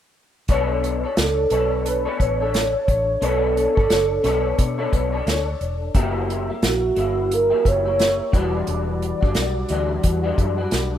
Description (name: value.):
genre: indie pop, bedroom pop.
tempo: 88 BPM.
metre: 4/4.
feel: swing 60% on 16ths.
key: B minor.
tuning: A4 = 443 Hz.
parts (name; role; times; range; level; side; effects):
electric guitar through a small old amp; accompaniment; 0.5-11.0 s; E3 to C#5; -24 LUFS; left 4 dB; ensemble chorus, vibrato effect.
vintage muted fingered electric bass; bass; 0.5-11.0 s; E1 to B2; -26 LUFS; equal; none.
unplugged drum kit; drums; 0.5-10.9 s; hi-hat, kick drum, snare drum; -21 LUFS; equal; none.
warm velvety synth lead; melody; 1.2-10.7 s; F#4 to D5; -22 LUFS; right 2 dB; lush chorus, slapback echo.
room: small room reverb.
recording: rough home demo mix.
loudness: -18 LUFS.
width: side -10 dB against mid.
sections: 0.5-11.0 A section.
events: none.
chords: 0.5 Bm9; 5.9 F#7b9; 8.3 Em9.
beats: | 0.49 1.17 1.86 2.54 | 3.22 3.90 4.58 5.27 | 5.95 6.63 7.31 8.00 | 8.68 9.36 10.04 10.72.